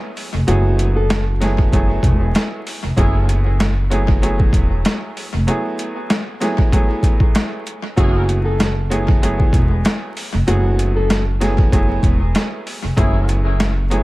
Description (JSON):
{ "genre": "hip hop, boom-bap hip-hop", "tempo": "96 BPM", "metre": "4/4", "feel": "swing 55% on 16ths", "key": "F# minor", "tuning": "A4 = 436 Hz", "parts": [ { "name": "clear upright piano", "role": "accompaniment", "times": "0.0-14.0 s", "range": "F#3 to G#4", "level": "-23 LUFS", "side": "right 1 dB", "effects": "cassette tape, high-pass filter, low-pass filter, tape echo" }, { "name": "boom bap sampler-style drum kit", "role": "drums", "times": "0.2-14.0 s", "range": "hi-hat, kick drum, rim click, snare drum", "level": "-17 LUFS", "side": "equal", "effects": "overdrive, tape echo" }, { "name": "upright bass", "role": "bass", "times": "0.3-14.0 s", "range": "E1 to F#1", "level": "-17 LUFS", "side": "equal", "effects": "none" }, { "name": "nylon-string guitar", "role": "melody", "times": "0.5-1.2, 8.0-11.2 s", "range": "F#4 to A4", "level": "-24 LUFS", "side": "equal", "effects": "high-pass filter, low-pass filter, tape echo" }, { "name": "warm horn section", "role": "stabs", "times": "3.0-3.4, 8.0-8.2, 13.0-13.4 s", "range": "C#4 to G#4", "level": "-30 LUFS", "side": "left 1 dB", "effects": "high-pass filter, low-pass filter, tape echo" } ], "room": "small room ambience", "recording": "echo-heavy mix, vinyl crackle", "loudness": "-14 LUFS", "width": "side -19 dB against mid", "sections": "0.0-14.0 A section", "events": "none", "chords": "0.0 F#m11" }